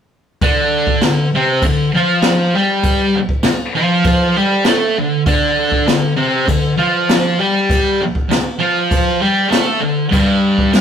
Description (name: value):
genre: garage rock duo or trio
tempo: 99 BPM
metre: 4/4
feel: straight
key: D minor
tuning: A4 = 440 Hz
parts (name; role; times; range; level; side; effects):
- thick fuzz guitar; riff; 0.4-10.8 s; G2 to A4; -14 LUFS; equal; distortion
- jazz brush drum kit; drums; 0.4-10.8 s; crash cymbal, kick drum, snare drum; -18 LUFS; equal; none
room: wet small room reverb, RT60 0.5 s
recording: rough rehearsal-room recording, warm saturation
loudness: -12 LUFS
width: side -8 dB against mid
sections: 0.4-10.8 A section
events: none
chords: 0.4 Dm; 10.1 G5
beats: | 0.41 1.02 1.63 2.23 | 2.84 3.45 4.06 4.66 | 5.27 5.88 6.49 7.09 | 7.70 8.30 8.91 9.52 | 10.12 10.73